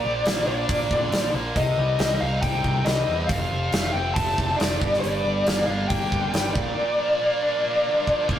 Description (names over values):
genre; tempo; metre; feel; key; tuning
classic rock; 138 BPM; 4/4; straight; unclear; A4 = 441 Hz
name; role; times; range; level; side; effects
bluesy overdriven lead guitar; melody; 0.0-8.2 s; D5 to A5; -24 LUFS; left 1 dB; distortion
tight distorted guitar; riff; 0.0-8.4 s; F2 to Eb4; -28 LUFS; right 1 dB; distortion
growling picked electric bass; bass; 0.1-6.7 s; F1 to E2; -27 LUFS; equal; overdrive
gated 80s drum kit; drums; 0.3-8.4 s; hi-hat, kick drum, snare drum; -26 LUFS; equal; none
room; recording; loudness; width
wet stone room reverb, RT60 1.2 s; rough rehearsal-room recording, tube saturation; -20 LUFS; side -10 dB against mid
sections
0.0-8.4 A section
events
drum fill 8.1-8.4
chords
0.0 Bb; 1.6 Cm; 3.3 F; 4.8 Gm; 6.6 Bb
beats
0.25 0.69 1.12 | 1.56 1.99 2.43 2.86 | 3.30 3.73 4.17 4.60 | 5.04 5.47 5.91 6.34 | 6.78 7.21 7.64 8.08